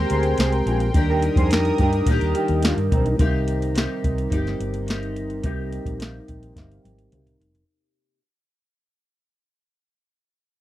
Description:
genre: indie pop, bedroom pop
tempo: 107 BPM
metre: 4/4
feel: straight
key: unclear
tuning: A4 = 440 Hz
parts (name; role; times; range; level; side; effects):
- mellow tonewheel organ; accompaniment; 0.0-7.7 s; Gb3 to C6; -27 LUFS; right 3 dB; slow rotary speaker, cassette tape, low-pass filter
- picked steel-string acoustic guitar; accompaniment; 0.0-8.2 s; C3 to Bb4; -28 LUFS; left 4 dB; analog chorus, vibrato effect, low-pass filter
- phased analog pad; sustained chords; 0.0-3.2 s; Bb4 to Eb6; -30 LUFS; left 2 dB; phaser, chorus
- vintage muted fingered electric bass; bass; 0.0-7.6 s; F1 to Bb2; -24 LUFS; equal; none
- electric guitar through a small old amp; second line; 0.1-3.1 s; C4 to C5; -27 LUFS; right 2 dB; analog chorus, slapback echo
- soft vintage rhythm box; drums; 0.1-7.7 s; hi-hat, kick drum, snare drum, toms; -22 LUFS; equal; none
room: little or no reverb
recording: dry, close 1970s-style studio recording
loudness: -19 LUFS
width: side -14 dB against mid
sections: 0.0-3.2 A section; 3.2-7.7 B section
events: fade-out 3.2-7.7; filter sweep 3.2-7.7; tonewheel organ fill 6.0-7.7; drum fill 6.6-7.7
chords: 0.0 Abmaj9; 0.9 Ebmaj7; 3.2 Cm7

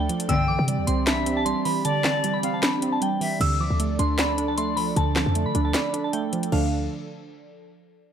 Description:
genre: hip hop, trap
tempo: 154 BPM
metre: 4/4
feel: half-time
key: D dorian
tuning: A4 = 439 Hz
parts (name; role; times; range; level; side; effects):
- soft synth bell; melody; 0.0-6.7 s; F5 to E6; -28 LUFS; left 1 dB; chorus, phaser, low-pass filter
- warbly dusty pluck; accompaniment; 0.0-6.7 s; D3 to D5; -27 LUFS; right 5 dB; chorus, low-pass filter
- airy breathy pad; sustained chords; 0.0-6.7 s; E3 to D5; -32 LUFS; equal; chorus, low-pass filter
- short 808-style bass; bass; 0.0-6.9 s; B1 to D3; -26 LUFS; left 1 dB; none
- trap drum kit; drums; 0.1-6.6 s; crash cymbal, handclaps, hi-hat, snare drum; -28 LUFS; left 1 dB; none
- bright silver concert flute; second line; 0.3-3.4 s; D5 to G5; -29 LUFS; left 4 dB; digital delay
- dark symphonic string section; stabs; 0.3-0.5 s; G1 to D3; -27 LUFS; left 6 dB; none
room: light reverb, digital ambience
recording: none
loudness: -21 LUFS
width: side -8 dB against mid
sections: 0.0-3.4 A section; 3.4-6.5 B section; 6.5-8.1 C section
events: kick muted 1.8-3.4; break 5.7-6.5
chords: 0.3 Cadd9; 3.4 Dm

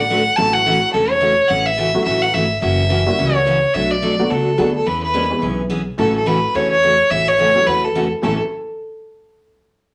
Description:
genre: country, western swing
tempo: 214 BPM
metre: 4/4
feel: swing 60% on 8ths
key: A major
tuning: A4 = 439 Hz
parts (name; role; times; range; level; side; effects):
- clear fiddle; melody; 0.0-8.4 s; A4 to A5; -19 LUFS; equal; none
- upright bass; bass; 0.0-8.4 s; E1 to E2; -27 LUFS; equal; none
- picked steel-string acoustic guitar; accompaniment; 0.1-8.4 s; A2 to B4; -24 LUFS; equal; none
- honky-tonk upright piano; accompaniment; 0.4-8.4 s; D#3 to G#4; -25 LUFS; equal; none
room: wet studio reverb, RT60 0.6 s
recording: none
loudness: -17 LUFS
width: mono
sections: 0.0-8.2 A section; 8.2-9.4 B section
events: none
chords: 0.4 A6; 2.6 F#7b9; 3.7 Bm7; 4.9 E6; 6.0 A6

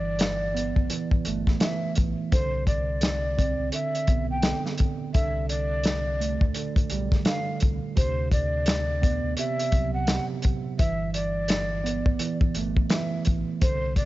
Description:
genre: hip hop, boom-bap hip-hop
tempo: 85 BPM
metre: 4/4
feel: swing 60% on 16ths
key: G major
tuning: A4 = 440 Hz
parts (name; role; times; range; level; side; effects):
- breathy hollow jazz flute; melody; 0.0-14.1 s; C5 to G5; -30 LUFS; equal; high-pass filter, low-pass filter, cassette tape
- mellow tine electric piano; accompaniment; 0.0-14.1 s; C3 to C4; -30 LUFS; right 6 dB; high-pass filter, low-pass filter, cassette tape
- sub bass with octave; bass; 0.0-14.1 s; G1 to D2; -30 LUFS; left 1 dB; none
- warm soul drum kit; drums; 0.2-14.1 s; hi-hat, kick drum, snare drum; -25 LUFS; left 1 dB; none
- finger snaps; percussion; 11.5-13.1 s; none; -44 LUFS; left 10 dB; none
room: small room ambience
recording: home recording on cassette, nothing above 7.7 kHz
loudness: -23 LUFS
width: side -16 dB against mid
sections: 0.0-14.1 A section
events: none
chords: 0.0 G69; 2.3 Csus2; 5.1 Am11; 8.0 D6; 10.8 G69

